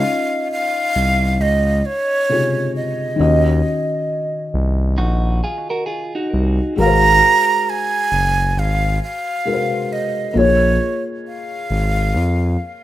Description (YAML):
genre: hip hop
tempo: 67 BPM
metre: 4/4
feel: swing 62% on 16ths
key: Db major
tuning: A4 = 440 Hz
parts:
  - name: breathy jazz flute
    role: melody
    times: 0.0-12.8 s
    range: Db5 to Bb5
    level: -18 LUFS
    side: right 3 dB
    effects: none
  - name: felt-muted upright piano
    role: accompaniment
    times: 0.0-12.8 s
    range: C3 to F5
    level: -21 LUFS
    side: left 3 dB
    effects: cassette tape
  - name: smooth gliding synth bass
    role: bass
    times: 0.0-12.6 s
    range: Gb1 to F2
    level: -17 LUFS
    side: equal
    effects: none
  - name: clean electric guitar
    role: second line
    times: 5.0-6.7 s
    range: Eb4 to Bb4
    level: -24 LUFS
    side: right 1 dB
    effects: phaser, plate reverb, analog delay
room: moderate small room reverb, RT60 0.6 s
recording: rough home demo mix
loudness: -15 LUFS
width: side -14 dB against mid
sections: 0.0-12.8 A section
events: none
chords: 0.0 Dbmaj9; 3.2 Ebm7; 6.8 Ab13; 10.4 Bbm7